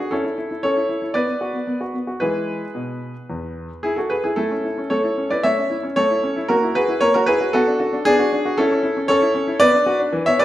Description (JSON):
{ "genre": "classical-period piano sonatina", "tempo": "114 BPM", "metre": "4/4", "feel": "straight", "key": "A major", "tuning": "A4 = 440 Hz", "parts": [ { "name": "clear grand piano", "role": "solo", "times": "0.0-10.4 s", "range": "E2 to E5", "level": "-17 LUFS", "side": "equal", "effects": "none" } ], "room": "wet recital hall reverb, RT60 1.6 s", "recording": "none", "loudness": "-17 LUFS", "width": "side -14 dB against mid", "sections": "0.0-10.4 A section", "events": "none", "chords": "0.1 A/C#; 1.2 Bm; 2.2 E; 4.4 A; 6.5 F#7/A#; 7.5 Bm7; 8.6 A/C#; 9.6 Bm" }